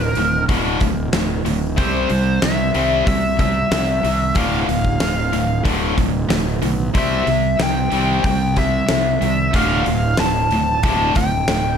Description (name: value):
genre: hard rock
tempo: 93 BPM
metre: 4/4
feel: straight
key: D minor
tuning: A4 = 440 Hz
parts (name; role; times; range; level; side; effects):
- biting lead guitar; melody; 0.0-11.8 s; C5 to A5; -21 LUFS; left 2 dB; overdrive, tape echo
- overdriven electric guitar; riff; 0.0-11.8 s; D2 to C4; -24 LUFS; left 12 dB; none
- scooped high-gain guitar; riff; 0.0-11.8 s; D2 to C4; -23 LUFS; right 12 dB; distortion
- fuzz fingered electric bass; bass; 0.0-11.8 s; D1 to C2; -22 LUFS; equal; overdrive
- huge arena drum kit; drums; 0.2-11.6 s; hi-hat, kick drum, snare drum; -22 LUFS; equal; none
room: light reverb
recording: none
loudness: -16 LUFS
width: side -7 dB against mid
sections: 0.0-11.8 A section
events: none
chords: 0.0 D5; 1.8 C; 4.4 Dm; 6.9 C; 9.5 Dm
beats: 0.48 1.13 | 1.77 2.42 3.07 3.71 | 4.36 5.00 5.65 6.30 | 6.95 7.59 8.24 8.89 | 9.54 10.19 10.84 11.48